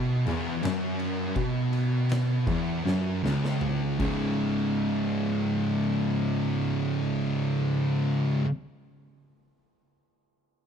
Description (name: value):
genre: stoner and doom metal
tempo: 76-83 BPM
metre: 4/4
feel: straight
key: C# minor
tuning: A4 = 443 Hz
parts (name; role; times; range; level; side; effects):
- thick fuzz guitar; riff; 0.0-8.5 s; C#2 to C#3; -29 LUFS; left 6 dB; distortion
- thick fuzz guitar; riff; 0.0-8.5 s; C#2 to C#3; -29 LUFS; right 6 dB; distortion
- thick fuzz guitar; riff; 0.0-8.5 s; C#2 to C#3; -32 LUFS; equal; distortion
- dark cello; bass; 0.3-4.1 s; C#2 to B2; -32 LUFS; equal; tube saturation
- oversized low-tuned drum kit; drums; 0.3-4.2 s; crash cymbal, kick drum, ride cymbal, snare drum, toms; -36 LUFS; equal; none
room: small room reverb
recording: none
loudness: -25 LUFS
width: side -7 dB against mid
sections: 0.0-4.4 A section; 4.4-7.5 B section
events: slowing down 0.0-4.4; drum fill 2.9-4.4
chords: 0.0 C#m; 4.0 C#5